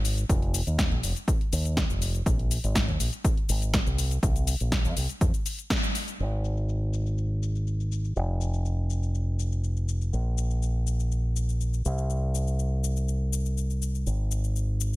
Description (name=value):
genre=nu-disco, nu disco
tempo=122 BPM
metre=4/4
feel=straight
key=unclear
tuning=A4 = 439 Hz
part: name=fingered electric bass with an envelope filter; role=bass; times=0.0-15.0 s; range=F1 to F2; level=-26 LUFS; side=equal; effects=tube saturation
part: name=house drum kit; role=drums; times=0.0-15.0 s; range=hi-hat, shaker, snare drum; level=-32 LUFS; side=left 2 dB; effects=low-pass filter on hats, studio reverb, low-pass filter on perc, low-pass filter on snare
part: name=electronic kick drum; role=drums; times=0.3-5.8 s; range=none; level=-27 LUFS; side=equal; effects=studio reverb
room=digital ambience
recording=none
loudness=-25 LUFS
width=side -19 dB against mid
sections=0.0-6.2 A section; 6.2-15.0 B section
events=band accent 5.7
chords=none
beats=| 0.29 0.79 1.28 1.77 | 2.26 2.75 3.25 3.74 | 4.23 4.72 5.21 5.71 | 6.20 6.69 7.18 7.67 | 8.16 8.66 9.15 9.64 | 10.13 10.62 11.12 11.61 | 12.10 12.59 13.08 13.57 | 14.07 14.56